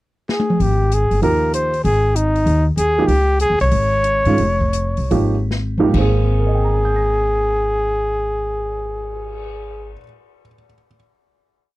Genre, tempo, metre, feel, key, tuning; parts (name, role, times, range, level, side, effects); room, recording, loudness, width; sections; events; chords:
modal jazz; 134-193 BPM; 4/4; swing 64% on 8ths; Ab major; A4 = 440 Hz
breathy trumpet; melody; 0.3-9.9 s; Eb4 to Db5; -19 LUFS; equal
open jazz drum kit; drums; 0.3-9.4 s; crash cymbal, cymbal swell, hi-hat, kick drum, snare drum, toms; -26 LUFS; left 1 dB
upright bass; bass; 0.6-9.9 s; F1 to Ab2; -19 LUFS; equal
dark baby grand piano; accompaniment; 1.2-11.0 s; Ab2 to Bb6; -20 LUFS; right 4 dB
little or no reverb; dry, close 1970s-style studio recording; -15 LUFS; side -18 dB against mid
0.0-0.6 pickup bar; 0.6-5.9 A section; 5.9-9.5 final chord
drum fill 0.3-0.6, 5.5-5.9; slowing down 3.1-5.9
0.0 N.C.; 0.6 Abmaj7sus2; 3.1 Dbadd9; 5.9 Abmaj9